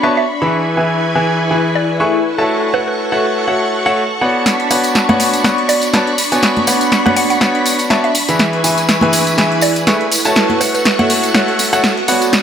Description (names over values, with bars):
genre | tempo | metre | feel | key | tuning
piano house | 122 BPM | 4/4 | swing 56% on 16ths | B dorian | A4 = 439 Hz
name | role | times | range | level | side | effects
mallet-like synth pluck | melody | 0.0-10.8 s | B4 to F#5 | -21 LUFS | right 2 dB | chorus, phaser, vintage 12-bit sampler grit, dub echo
string machine, violins | sustained chords | 0.0-12.4 s | D4 to C#6 | -21 LUFS | equal | ensemble chorus
bright concert grand piano | riff | 0.0-12.3 s | E3 to C#6 | -15 LUFS | equal | low-pass filter, dub echo
ethereal airy pad | texture | 0.0-12.4 s | D4 to C#6 | -20 LUFS | equal | ensemble chorus, built-in reverb, phaser
house drum kit | drums | 4.5-12.4 s | hi-hat, snare drum | -16 LUFS | equal | none
tambourine and congas | percussion | 4.5-12.4 s | none | -19 LUFS | right 1 dB | none
room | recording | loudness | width
moderate lush hall reverb, RT60 2.2 s | none | -11 LUFS | side -8 dB against mid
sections
0.0-4.5 A section; 4.5-12.4 B section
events
filter sweep on grand piano 0.0-4.5; filter sweep on string machine 0.0-4.5; build-up 4.5-12.4; drum fill 4.5-12.4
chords
0.0 Bmadd9; 0.5 E; 2.2 A6; 4.5 Bmadd9; 8.4 E; 10.1 A6